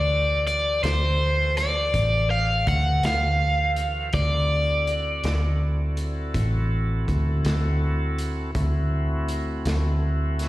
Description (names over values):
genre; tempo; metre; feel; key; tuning
slow blues; 54 BPM (dotted quarters); 12/8; straight; D mixolydian; A4 = 440 Hz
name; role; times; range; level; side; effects
cranked stack guitar; melody; 0.0-7.0 s; C5 to F#5; -23 LUFS; equal; overdrive, slapback echo, digital delay
bright tonewheel organ; sustained chords; 0.0-10.5 s; E3 to C5; -33 LUFS; equal; slow rotary speaker
vintage muted fingered electric bass; bass; 0.0-10.5 s; A1 to D2; -23 LUFS; equal; none
vintage drum kit; drums; 0.5-10.5 s; hi-hat, kick drum, snare drum; -31 LUFS; equal; none
room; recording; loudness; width
small room ambience; live gig heard through the venue's PA, recital hall reverb; -21 LUFS; side -16 dB against mid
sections
0.0-10.5 A section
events
none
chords
0.0 D9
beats
0.83 1.94 3.04 | 4.14 5.24 6.34 7.45 | 8.55 9.65